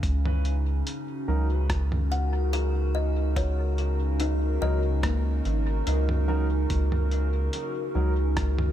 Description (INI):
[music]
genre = ambient dub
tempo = 72 BPM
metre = 4/4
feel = straight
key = unclear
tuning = A4 = 440 Hz
[part]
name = warbly tape-like pad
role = sustained chords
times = 0.0-8.7 s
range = C#3 to A#4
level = -31 LUFS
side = equal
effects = chorus, built-in reverb, phaser
[part]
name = soft dub sub bass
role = bass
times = 0.0-8.7 s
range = G#1 to C#2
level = -24 LUFS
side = equal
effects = none
[part]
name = electronic kick drum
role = drums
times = 0.0-8.5 s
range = none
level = -30 LUFS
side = equal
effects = overdrive, studio reverb
[part]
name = lo-fi sampler-style drum kit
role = drums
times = 0.0-8.7 s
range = hi-hat, rim click, toms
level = -35 LUFS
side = right 1 dB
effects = overdrive, studio reverb, dub echo
[part]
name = warm upright piano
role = stabs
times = 1.3-8.1 s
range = F#3 to A#4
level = -38 LUFS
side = right 2 dB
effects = dub echo
[part]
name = kalimba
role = arpeggios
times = 2.1-7.6 s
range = A#3 to F#5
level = -36 LUFS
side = left 6 dB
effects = dub echo
[sound]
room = digital ambience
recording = none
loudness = -24 LUFS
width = side -11 dB against mid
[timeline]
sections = 0.0-8.7 A section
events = none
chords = 0.0 D#m